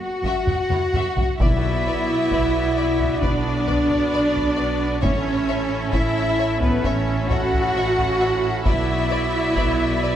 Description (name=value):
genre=cinematic, epic orchestral film score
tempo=66 BPM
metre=4/4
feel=straight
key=B minor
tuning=A4 = 440 Hz
part: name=rich symphonic violin section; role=melody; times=0.0-10.2 s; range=B4 to F#5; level=-31 LUFS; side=left 3 dB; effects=none
part: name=silver concert flute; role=second line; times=0.0-10.2 s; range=B4 to F#5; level=-29 LUFS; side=left 2 dB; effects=none
part: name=clear symphonic viola section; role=accompaniment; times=0.0-10.2 s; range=B3 to F#4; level=-28 LUFS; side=right 2 dB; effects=none
part: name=mellow French horn section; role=sustained chords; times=0.0-10.2 s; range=B3 to F#4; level=-25 LUFS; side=left 1 dB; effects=none
part: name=rich symphonic cello section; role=bass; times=0.0-10.2 s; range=B3 to F#4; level=-29 LUFS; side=right 2 dB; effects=none
part: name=clear symphonic double bass section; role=bass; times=0.2-10.2 s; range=A1 to F#2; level=-27 LUFS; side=right 2 dB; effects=none
part: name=taiko ensemble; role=drums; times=0.2-10.2 s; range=none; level=-24 LUFS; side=equal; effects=none
part: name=warm symphonic violin section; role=second line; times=0.3-10.1 s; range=E4 to E5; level=-32 LUFS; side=left 4 dB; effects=none
part: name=pipe organ, strings celeste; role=sustained chords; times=1.4-10.2 s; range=B3 to E5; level=-28 LUFS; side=equal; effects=none
part: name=timpani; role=percussion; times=1.4-2.7 s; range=B2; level=-29 LUFS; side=left 2 dB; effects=none
room=wet scoring stage reverb, RT60 1.9 s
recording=none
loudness=-18 LUFS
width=side -10 dB against mid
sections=0.0-1.4 A section; 1.4-10.2 B section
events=drum fill 0.5-1.4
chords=0.0 F#5; 1.4 Bm; 5.0 A; 8.7 Bm